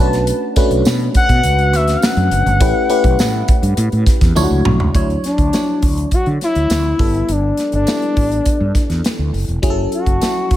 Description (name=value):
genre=polished 1980s jazz-funk pop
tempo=102 BPM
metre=4/4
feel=straight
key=D major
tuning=A4 = 439 Hz
part: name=expressive portamento lead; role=melody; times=0.0-10.6 s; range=D4 to A5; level=-18 LUFS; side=left 2 dB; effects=chorus
part: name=FM electric piano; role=accompaniment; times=0.0-10.6 s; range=F#3 to C#5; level=-20 LUFS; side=left 1 dB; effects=phaser, wide subtle chorus
part: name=mellow fretless electric bass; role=bass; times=0.0-10.6 s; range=E1 to D3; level=-17 LUFS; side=equal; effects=none
part: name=modern studio drum kit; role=drums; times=0.1-10.6 s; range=hi-hat, kick drum, snare drum, toms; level=-17 LUFS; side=equal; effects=gated reverb
part: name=tambourine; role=percussion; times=0.9-10.4 s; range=none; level=-30 LUFS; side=right 6 dB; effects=none
room=little or no reverb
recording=none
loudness=-13 LUFS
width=side -13 dB against mid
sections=0.0-4.9 A section; 4.9-10.6 B section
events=drum fill 4.4-4.9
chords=0.0 Bm9; 2.6 A9; 4.4 Dmaj9; 7.0 G69; 9.6 F#m7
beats=| 0.27 0.85 1.44 2.02 | 2.61 3.19 3.77 4.36 | 4.94 5.53 6.12 6.70 | 7.29 7.87 8.46 9.04 | 9.63 10.21